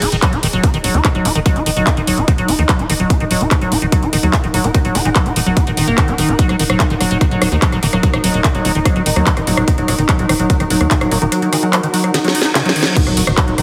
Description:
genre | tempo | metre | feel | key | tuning
psychedelic trance | 146 BPM | 4/4 | straight | Eb minor | A4 = 436 Hz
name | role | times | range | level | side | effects
swarming drone | sustained chords | 0.0-13.6 s | Eb4 to Gb5 | -25 LUFS | equal | built-in reverb, sidechain pumping
liquid acid bass | riff | 0.0-13.6 s | Db3 to F4 | -21 LUFS | equal | chorus, sidechain pumping, delay
tight sequencer bass | bass | 0.0-13.6 s | Eb1 to Eb2 | -21 LUFS | equal | none
techno drum kit | drums | 0.0-13.6 s | crash cymbal, handclaps, hi-hat, rim click, snare drum | -21 LUFS | equal | studio reverb
granular cloud pad | texture | 0.2-13.6 s | Eb4 to Bb5 | -29 LUFS | equal | none
electronic kick drum | drums | 0.2-13.5 s | none | -19 LUFS | equal | studio reverb
resonant blip pluck | second line | 1.3-1.6, 4.5-5.1, 7.8-8.2, 11.1-11.7 s | Gb3 to Bb3 | -30 LUFS | equal | none
reverse cymbal and impact | sound effects | 12.3-13.6 s | none | -26 LUFS | equal | none
room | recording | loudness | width
light reverb | heavily compressed radio sound | -15 LUFS | mono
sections
0.0-13.0 A section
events
drum fill 12.1-13.0; reverse cymbal 12.3-13.0; impact 13.0-13.6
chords
0.0 Eb5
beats
0.23 0.64 1.05 | 1.46 1.87 2.28 2.69 | 3.10 3.51 3.92 4.33 | 4.75 5.16 5.57 5.98 | 6.39 6.80 7.21 7.62 | 8.03 8.44 8.86 9.27 | 9.68 10.09 10.50 10.91 | 11.32 11.73 12.14 12.55 | 12.96 13.38

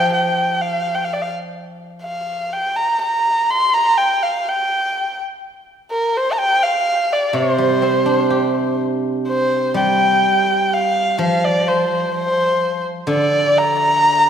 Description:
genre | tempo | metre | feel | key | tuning
chinese traditional, Chinese chamber ensemble | 62 BPM | 2/4 | straight | C shang mode | A4 = 438 Hz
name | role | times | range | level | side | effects
dark erhu | melody | 0.0-14.3 s | Bb4 to C6 | -16 LUFS | equal | none
steel-string zither | accompaniment | 0.0-2.5, 7.3-14.3 s | C3 to G4 | -20 LUFS | right 2 dB | none
room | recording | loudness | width
moderate concert hall reverb, RT60 2.0 s | minimal, uncompressed stereo recording | -15 LUFS | side -8 dB against mid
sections
0.0-9.3 A section; 9.3-14.3 B section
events
none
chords
none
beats
0.58 | 1.56 2.54 | 3.51 4.47 | 5.44 6.39 | 7.34 8.31 | 9.28 10.25 | 11.21 12.15 | 13.09 14.04

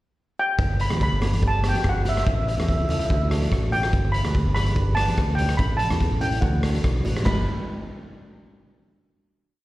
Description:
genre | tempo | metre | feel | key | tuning
calypso | 144 BPM | 4/4 | straight | G major | A4 = 440 Hz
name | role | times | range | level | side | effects
steel pan | melody | 0.4-7.5 s | E5 to B5 | -27 LUFS | equal | slapback echo
modern bright fingered electric bass | bass | 0.6-7.5 s | G1 to E2 | -23 LUFS | equal | none
raw garage drum kit | drums | 0.6-7.4 s | crash cymbal, hi-hat, kick drum, rim click, snare drum | -25 LUFS | equal | none
steel pan | accompaniment | 0.9-7.5 s | B3 to B4 | -33 LUFS | right 2 dB | slapback echo
congas | percussion | 0.9-7.5 s | none | -32 LUFS | equal | none
room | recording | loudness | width
light reverb | live gig heard through the venue's PA, recital hall reverb | -20 LUFS | side -17 dB against mid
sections
0.0-0.6 pickup bar; 0.6-7.3 verse; 7.3-8.9 final chord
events
none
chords
0.0 N.C.; 0.6 G; 2.3 A; 3.1 D; 3.9 G; 5.6 A; 6.4 D; 7.3 G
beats
0.17 | 0.59 1.01 1.43 1.84 | 2.26 2.68 3.10 3.51 | 3.93 4.35 4.76 5.18 | 5.60 6.01 6.43 6.85 | 7.26

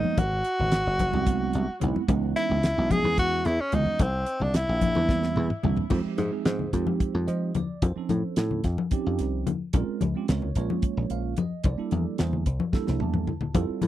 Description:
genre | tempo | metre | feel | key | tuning
electric jazz fusion | 220 BPM (eighths) | 7/8 | straight | unclear | A4 = 440 Hz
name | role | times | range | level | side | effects
breathy tenor saxophone | melody | 0.0-5.6 s | C4 to G#4 | -27 LUFS | equal | tape echo
bell-like tine electric piano | accompaniment | 0.0-13.8 s | E3 to A5 | -30 LUFS | right 8 dB | phaser
dry thumbed slap bass | bass | 0.0-13.9 s | F#1 to F3 | -27 LUFS | equal | none
congas | percussion | 0.0-13.9 s | none | -30 LUFS | left 5 dB | none
damped 70s drum kit | drums | 0.2-13.9 s | crash cymbal, hi-hat, kick drum, snare drum, toms | -27 LUFS | equal | none
room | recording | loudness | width
light reverb | dry, close 1970s-style studio recording | -23 LUFS | side -13 dB against mid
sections
0.0-5.9 A section; 5.9-13.9 B section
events
drum fill 5.1-5.9, 12.7-13.6; tine electric piano fill 12.7-13.6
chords
0.2 G#7alt; 2.1 C#m9; 4.0 C7; 5.9 Fm9; 7.8 F7b13; 9.7 Bbm7; 11.7 C13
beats
| 0.18 0.45 0.73 1.00 1.27 1.55 1.82 | 2.09 2.37 2.64 2.91 3.19 3.46 3.73 | 4.01 4.28 4.55 4.83 5.10 5.37 5.65 | 5.92 6.19 6.46 6.74 7.01 7.29 7.56 | 7.83 8.10 8.38 8.65 8.92 9.20 9.47 | 9.74 10.02 10.29 10.56 10.83 11.11 11.38 | 11.65 11.92 12.20 12.47 12.74 13.01 13.29 | 13.56 13.83

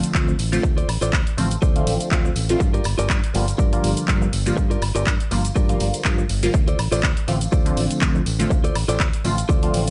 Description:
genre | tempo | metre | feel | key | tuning
filtered disco house | 122 BPM | 4/4 | swing 54% on 16ths | G minor | A4 = 440 Hz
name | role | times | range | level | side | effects
funky polysynth comp | accompaniment | 0.0-9.9 s | D3 to F4 | -26 LUFS | equal | chorus, phaser, sidechain pumping
fingered electric bass | bass | 0.0-9.9 s | G1 to G2 | -26 LUFS | equal | sidechain pumping
house drum kit | drums | 0.0-9.9 s | cabasa, handclaps, hi-hat, woodblock | -30 LUFS | equal | studio reverb
tambourine | percussion | 0.0-9.9 s | none | -38 LUFS | equal | sidechain pumping on perc
electronic kick drum | drums | 0.1-9.6 s | none | -23 LUFS | equal | studio reverb
direct-recorded clean electric guitar | riff | 0.3-9.8 s | F4 to D5 | -29 LUFS | equal | sidechain pumping
room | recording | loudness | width
light reverb | nothing above 10.4 kHz | -20 LUFS | mono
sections
0.0-9.9 A section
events
none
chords
0.0 Dm7; 2.6 Gm7; 6.5 Dm7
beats
0.15 | 0.64 1.13 1.62 2.12 | 2.61 3.10 3.59 4.08 | 4.57 5.07 5.56 6.05 | 6.54 7.03 7.53 8.02 | 8.51 9.00 9.49

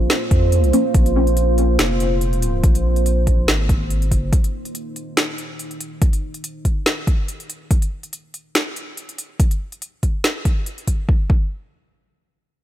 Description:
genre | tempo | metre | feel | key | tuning
deep dubstep | 142 BPM | 4/4 | swing 55% on 16ths, half-time | unclear | A4 = 439 Hz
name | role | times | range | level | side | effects
deep dark ambient pad | sustained chords | 0.0-7.7 s | Bb3 to C5 | -24 LUFS | right 2 dB | chorus, built-in reverb
saturated sub bass | bass | 0.0-4.3 s | F1 to F2 | -18 LUFS | equal | none
deep house drum kit | drums | 0.1-11.0 s | hi-hat, snare drum | -22 LUFS | equal | none
electronic kick drum | drums | 0.3-11.4 s | none | -17 LUFS | equal | none
filtered dub chord stab | stabs | 0.7-0.8 s | F3 to Db4 | -23 LUFS | left 2 dB | phaser, ensemble chorus, dub echo
room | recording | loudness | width
little or no reverb | none | -16 LUFS | side -12 dB against mid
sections
0.0-11.1 A section; 11.1-12.6 B section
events
filter sweep on sub bass 0.0-4.3; filter sweep on ambient pad 0.0-7.7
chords
0.0 Bb5; 11.1 N.C.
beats
0.10 0.52 | 0.94 1.37 1.79 2.21 | 2.63 3.06 3.48 3.90 | 4.33 4.75 5.17 5.59 | 6.01 6.44 6.86 7.28 | 7.71 8.13 8.55 8.97 | 9.39 9.82 10.24 10.66 | 11.09

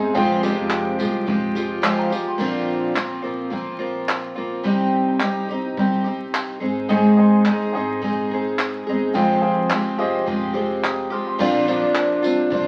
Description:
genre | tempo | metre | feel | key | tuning
acoustic pop | 107 BPM | 4/4 | swing 55% on 16ths | unclear | A4 = 442 Hz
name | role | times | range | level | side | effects
clear concert grand piano | accompaniment | 0.0-2.5, 6.9-12.7 s | D4 to F6 | -28 LUFS | equal | none
picked twelve-string acoustic guitar | accompaniment | 0.0-12.7 s | F2 to Ab4 | -22 LUFS | equal | none
warm woodwind section | sustained chords | 0.0-2.4, 11.4-12.7 s | C3 to G5 | -36 LUFS | equal | none
upright bass | bass | 0.0-12.7 s | F1 to C2 | -39 LUFS | equal | none
jazz brush drum kit | drums | 0.2-12.7 s | crash cymbal, handclaps, kick drum, tambourine | -29 LUFS | equal | none
room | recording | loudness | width
moderate studio reverb, RT60 0.8 s | very old 78 rpm record, vinyl crackle | -21 LUFS | mono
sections
0.0-2.4 A section; 2.4-11.4 B section; 11.4-12.7 A section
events
none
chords
0.2 Fmadd9; 2.4 Bbadd9; 4.7 Cm; 6.6 Ab; 9.2 Fmadd9; 11.4 Bbadd9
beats
| 0.16 0.72 1.28 1.85 | 2.41 2.97 3.53 4.09 | 4.66 5.22 5.78 6.34 | 6.91 7.47 8.03 8.59 | 9.15 9.71 10.28 10.84 | 11.40 11.96 12.52

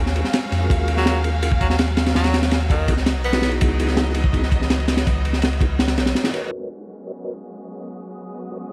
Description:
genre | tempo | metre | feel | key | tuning
drum and bass, jungle | 165 BPM | 4/4 | straight | G# minor | A4 = 440 Hz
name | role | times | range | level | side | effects
dark chamber string section | sustained chords | 0.0-8.7 s | E3 to E#5 | -32 LUFS | equal | low-pass filter
mellow tonewheel organ | stabs | 0.0-8.7 s | B3 to D#5 | -32 LUFS | equal | chorus vibrato, fast rotary speaker, low-pass filter, dub echo
soft dub sub bass | bass | 0.0-6.1 s | B1 to E#2 | -24 LUFS | equal | none
crunchy breakbeat drum kit | drums | 0.1-6.4 s | kick drum, ride cymbal, snare drum | -22 LUFS | equal | none
bright tenor saxophone | melody | 1.0-3.5 s | D#3 to B3 | -30 LUFS | equal | dub echo
wind-like tuned noise texture | texture | 7.6-8.7 s | D#6 | -52 LUFS | equal | built-in reverb
room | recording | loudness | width
small room ambience | vinyl crackle, low-pass filter | -20 LUFS | mono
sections
0.0-6.5 A section; 6.5-8.7 B section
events
drop 0.0-6.5; filter sweep on string section 6.5-8.7; filter sweep 6.5-8.7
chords
0.0 D#m11; 2.9 C#m11; 6.5 G#m11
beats
0.34 | 0.70 1.06 1.43 1.79 | 2.15 2.52 2.88 3.24 | 3.61 3.97 4.33 4.70 | 5.06 5.43 5.79 6.15 | 6.52 6.88 7.24 7.61 | 7.97 8.34 8.70

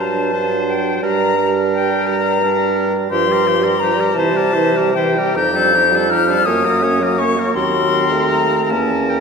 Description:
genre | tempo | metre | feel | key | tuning
classical, slow romantic movement for wind quintet | 47-58 BPM (dotted quarters) | 6/8 | rubato | G minor | A4 = 435 Hz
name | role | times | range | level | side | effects
silver concert flute | melody | 0.0-9.2 s | G5 to G6 | -18 LUFS | left 6 dB | none
bright oboe | second line | 0.0-9.2 s | G4 to Db5 | -23 LUFS | left 3 dB | none
bright clarinet | accompaniment | 0.0-9.2 s | Bb3 to G4 | -23 LUFS | right 6 dB | none
warm French horn | accompaniment | 0.0-9.2 s | E3 to Bb3 | -21 LUFS | right 2 dB | none
mellow bassoon | bass | 0.0-9.2 s | Eb2 to C3 | -19 LUFS | right 2 dB | none
room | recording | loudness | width
wet concert hall reverb, RT60 2.0 s | recorded in a church or concert hall | -14 LUFS | side -5 dB against mid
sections
0.0-9.2 A section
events
none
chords
0.0 D7/G; 1.0 Gm; 3.1 Gm7; 4.2 C7; 5.4 F13; 6.5 Gb; 7.6 Cm7b5/Eb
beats
0.00 | 1.04 2.09 | 3.12 4.17 | 5.38 6.47 | 7.56 8.72

